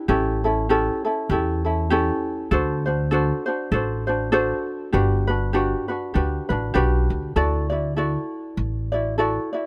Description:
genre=Hawaiian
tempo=99 BPM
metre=4/4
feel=swing 58% on 8ths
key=G major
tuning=A4 = 436 Hz
part: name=ukulele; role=accompaniment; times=0.0-9.7 s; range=C#4 to D5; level=-25 LUFS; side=equal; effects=none
part: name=upright bass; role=bass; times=0.1-9.4 s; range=G1 to E2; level=-26 LUFS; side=equal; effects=none
room=little or no reverb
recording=close, detailed microphones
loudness=-23 LUFS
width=mono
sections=0.0-7.4 A section; 7.4-9.7 B section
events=none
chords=0.1 A7; 2.5 D7; 4.9 Gmaj7; 7.4 Dadd9

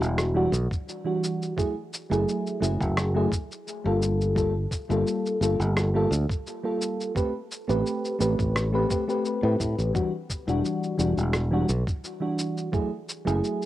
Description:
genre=sunset chillout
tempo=86 BPM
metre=4/4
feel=straight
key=unclear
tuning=A4 = 439 Hz
part: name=mellow FM electric piano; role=accompaniment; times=0.0-13.7 s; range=E3 to B4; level=-26 LUFS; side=moving between left 3 dB and right 3 dB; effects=chorus, auto-pan, cassette tape, tape echo, plate reverb
part: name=fingered electric bass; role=bass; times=0.0-13.4 s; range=E1 to A2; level=-25 LUFS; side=equal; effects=transformer saturation
part: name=electronic cabasa and rim click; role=drums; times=0.0-13.7 s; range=none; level=-32 LUFS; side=equal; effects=cassette tape
part: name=electronic kick drum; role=drums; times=0.7-12.9 s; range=none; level=-29 LUFS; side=equal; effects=cassette tape
room=moderate booth ambience, RT60 0.2 s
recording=home recording on cassette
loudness=-24 LUFS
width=side -14 dB against mid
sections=0.0-13.7 A section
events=none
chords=0.0 Em9; 1.6 F#m9; 4.0 Gm9; 7.2 Am9; 9.9 Em9; 12.7 F#m9

